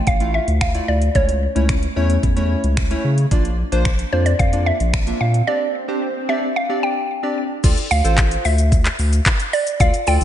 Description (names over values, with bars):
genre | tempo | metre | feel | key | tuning
dance-pop | 111 BPM | 4/4 | straight | D minor | A4 = 440 Hz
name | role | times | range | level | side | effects
mallet-like synth pluck | melody | 0.0-10.2 s | C5 to G5 | -22 LUFS | equal | chorus, ping-pong delay, slapback echo
saturated sub bass | bass | 0.1-10.2 s | A1 to C#3 | -18 LUFS | equal | sidechain pumping
smooth R&B drum kit | drums | 0.1-10.2 s | crash cymbal, finger snaps, handclaps, hi-hat, kick drum, shaker | -19 LUFS | equal | none
warm analog keys | accompaniment | 0.2-10.2 s | A3 to F5 | -24 LUFS | equal | chorus, sidechain pumping, slapback echo
swell | sound effects | 4.9-6.6 s | none | -31 LUFS | right 2 dB | slapback echo
room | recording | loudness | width
light reverb, digital ambience | nothing above 10.8 kHz | -16 LUFS | side -11 dB against mid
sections
0.0-7.6 A section; 7.6-10.2 B section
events
swell 4.9-7.6; break 5.5-7.6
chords
0.0 Dmadd9; 1.2 A/C#; 3.3 Bb; 5.5 Csus2; 7.6 Dm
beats
0.07 0.61 | 1.15 1.69 2.23 2.77 | 3.31 3.85 4.39 4.93 | 5.48 6.02 6.56 7.10 | 7.64 8.18 8.72 9.26 | 9.80